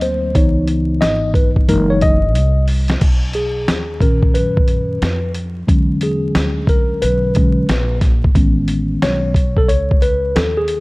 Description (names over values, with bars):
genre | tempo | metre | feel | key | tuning
hip hop, jazz-hop | 90 BPM | 4/4 | swing 65% on 16ths | B major | A4 = 441 Hz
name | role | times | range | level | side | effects
mellow tine electric piano | accompaniment | 0.0-10.8 s | A#2 to D#5 | -17 LUFS | left 1 dB | medium stereo tremolo
upright bass | bass | 0.0-10.8 s | F#1 to F#2 | -20 LUFS | equal | none
dusty soul sampler-style drum kit | drums | 0.0-10.8 s | crash cymbal, hi-hat, kick drum, snare drum | -16 LUFS | equal | none
room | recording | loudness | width
little or no reverb | dark, warm production, vinyl crackle | -13 LUFS | side -23 dB against mid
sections
0.0-3.0 A section; 3.0-10.8 A section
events
tine electric piano solo 0.0-3.0, 3.0-10.8; drum fill 2.4-3.0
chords
0.4 C#m9; 1.7 F#13; 3.0 Bmaj7; 5.7 E13; 8.4 Amaj9#11